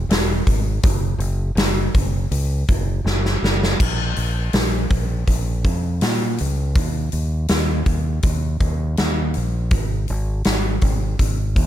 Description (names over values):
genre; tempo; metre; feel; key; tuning
rock, shoegaze and dream pop; 81 BPM; 4/4; straight; unclear; A4 = 440 Hz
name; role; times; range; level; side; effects
fingered electric bass; bass; 0.0-11.7 s; E1 to A#2; -21 LUFS; equal; none
huge arena drum kit; drums; 0.1-11.7 s; crash cymbal, hi-hat, kick drum, snare drum; -20 LUFS; equal; none
room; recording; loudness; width
little or no reverb; none; -18 LUFS; side -12 dB against mid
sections
0.0-3.8 A section; 3.8-11.7 B section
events
drum fill 3.1-3.8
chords
none